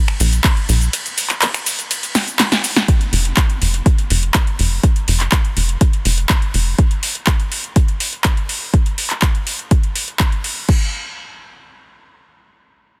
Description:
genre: progressive house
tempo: 123 BPM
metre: 4/4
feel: straight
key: unclear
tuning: A4 = 440 Hz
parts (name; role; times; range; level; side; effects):
- deep house drum kit; drums; 0.1-10.8 s; cabasa, crash cymbal, finger snaps, handclaps, hi-hat, ride cymbal, snare drum; -21 LUFS; equal; overdrive, sidechain pumping on hats, sidechain pumping on cymbals, sidechain pumping on perc
- tight sequencer bass; bass; 0.2-6.7 s; F1 to Bb1; -18 LUFS; equal; sidechain pumping
- electronic kick drum; drums; 0.4-10.8 s; none; -17 LUFS; equal; overdrive
room: digital ambience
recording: dense, heavily limited modern master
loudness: -17 LUFS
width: mono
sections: 0.0-2.9 A section; 2.9-10.7 B section; 10.7-13.0 C section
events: drop 0.0-2.9; break 0.9-2.9; drum fill 2.2-2.9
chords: none

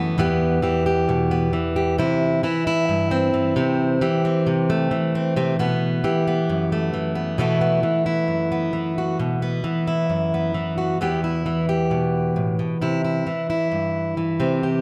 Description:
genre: folk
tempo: 133 BPM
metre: 4/4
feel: straight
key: E minor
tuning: A4 = 440 Hz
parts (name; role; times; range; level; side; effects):
- fingerpicked plugged-in steel-string acoustic guitar; solo; 0.0-14.8 s; E2 to G4; -22 LUFS; equal; none
room: wet large studio reverb, RT60 1.2 s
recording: none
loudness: -22 LUFS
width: mono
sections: 0.0-7.4 A section; 7.4-11.0 B section; 11.0-14.8 C section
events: none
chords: 0.2 Em; 2.0 C; 3.6 Am/C; 5.6 B7sus4; 11.0 Em; 12.8 C

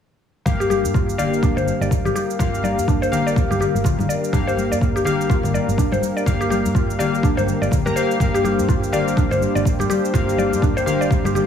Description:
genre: afro house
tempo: 124 BPM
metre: 4/4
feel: swing 59% on 16ths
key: G minor pentatonic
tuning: A4 = 440 Hz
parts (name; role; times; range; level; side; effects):
- warm analog pad; sustained chords; 0.5-11.5 s; G3 to C5; -26 LUFS; equal; chorus, sidechain pumping
- warm analog keys; stabs; 0.5-11.5 s; Bb3 to Bb5; -24 LUFS; left 3 dB; chorus, sidechain pumping, digital delay
- woody FM bass; bass; 0.5-11.4 s; G1 to G2; -25 LUFS; right 2 dB; sidechain pumping
- electronic kick drum; drums; 0.5-11.2 s; none; -19 LUFS; equal; none
- shaker; drums; 0.5-11.5 s; none; -36 LUFS; right 6 dB; none
- congas; percussion; 0.5-11.5 s; none; -26 LUFS; left 5 dB; none
- mallet-like synth pluck; arpeggios; 0.6-11.4 s; D4 to D5; -23 LUFS; left 1 dB; chorus, sidechain pumping, digital delay
room: light reverb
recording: studio ambience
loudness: -17 LUFS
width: side -8 dB against mid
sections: 0.5-11.5 A section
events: none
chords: 0.5 Gm7

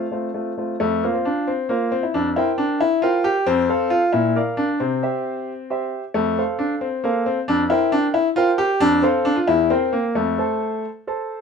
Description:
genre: classical-period piano sonatina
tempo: 90 BPM (dotted quarters)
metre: 6/8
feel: straight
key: F major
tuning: A4 = 438 Hz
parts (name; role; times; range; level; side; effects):
- clear baby grand piano; solo; 0.0-11.4 s; E2 to A5; -18 LUFS; left 1 dB; none
room: light reverb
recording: none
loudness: -18 LUFS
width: side -6 dB against mid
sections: 0.8-11.4 A section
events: none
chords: 0.0 F; 0.8 F5; 2.1 C5/F; 3.5 F; 4.1 Bb; 4.8 C; 6.2 F; 7.5 C5/F; 8.8 F; 9.5 C7/E; 10.2 F

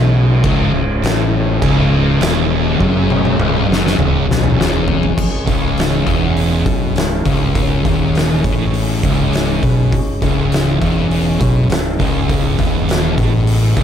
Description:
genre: stoner and doom metal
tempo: 101 BPM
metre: 4/4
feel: straight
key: C# minor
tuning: A4 = 440 Hz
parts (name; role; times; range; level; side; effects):
- percussive tonewheel organ; sustained chords; 0.0-13.8 s; C#3 to C#4; -24 LUFS; equal; slow rotary speaker
- thick fuzz guitar; riff; 0.0-13.8 s; C#2 to B2; -18 LUFS; left 8 dB; distortion
- thick fuzz guitar; riff; 0.0-13.8 s; C#2 to B2; -19 LUFS; right 8 dB; distortion
- growling fingered electric bass; bass; 0.0-13.8 s; C#1 to B1; -20 LUFS; equal; overdrive
- oversized low-tuned drum kit; drums; 0.4-13.8 s; crash cymbal, hi-hat, kick drum, snare drum, toms; -18 LUFS; equal; none
room: light reverb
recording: none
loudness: -12 LUFS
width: side -9 dB against mid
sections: 0.0-5.2 A section; 5.2-13.8 B section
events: drum fill 2.8-5.2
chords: 0.0 C#m

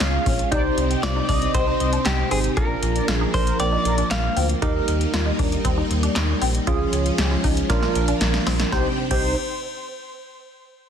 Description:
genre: synth-pop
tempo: 117 BPM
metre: 4/4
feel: straight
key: C minor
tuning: A4 = 436 Hz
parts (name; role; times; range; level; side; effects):
- bell-like tine electric piano; accompaniment; 0.0-9.3 s; Db4 to F5; -27 LUFS; right 5 dB; phaser
- string machine, full ensemble; sustained chords; 0.0-9.0 s; C3 to G4; -27 LUFS; equal; ensemble chorus
- resonant blip pluck; arpeggios; 0.0-9.3 s; C4 to G4; -30 LUFS; left 3 dB; phaser, tape echo
- smooth synth bass; bass; 0.0-9.3 s; Ab1 to Eb2; -24 LUFS; equal; none
- electro analog drum machine; drums; 0.0-9.2 s; crash cymbal, handclaps, hi-hat, kick drum, snare drum; -25 LUFS; equal; none
- mellow synth brass; second line; 0.5-4.0, 8.7-9.3 s; Bb4 to G5; -31 LUFS; left 1 dB; chorus, tape echo
- direct-recorded clean electric guitar; melody; 1.0-4.5 s; G4 to F5; -26 LUFS; equal; tape echo
room: light reverb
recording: dense, heavily limited modern master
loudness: -19 LUFS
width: side -8 dB against mid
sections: 0.0-8.7 A section; 8.7-10.8 B section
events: tine electric piano fill 0.0-0.5; drum fill 7.7-8.7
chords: 0.0 Db; 0.5 Cmadd9; 2.6 Bb; 4.6 Eb; 6.7 Db; 7.7 Bb; 8.7 Cmadd9

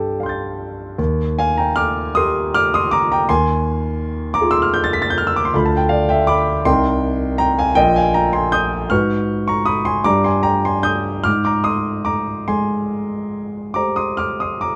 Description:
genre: classical, impressionist solo piano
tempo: 45-55 BPM (dotted quarters)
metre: 6/8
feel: rubato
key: unclear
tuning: A4 = 441 Hz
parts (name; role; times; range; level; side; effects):
- clear grand piano; solo; 0.0-14.8 s; Bb1 to B6; -18 LUFS; equal; none
room: light reverb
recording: dark, warm production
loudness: -18 LUFS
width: mono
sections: 0.0-14.8 A section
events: none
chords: 0.0 G9sus4; 1.0 Eb69; 3.3 Fm7/Eb; 5.5 Dm; 6.7 Cm7; 7.8 Bb5; 8.9 Abm7; 10.1 Gm; 11.3 Abmaj7

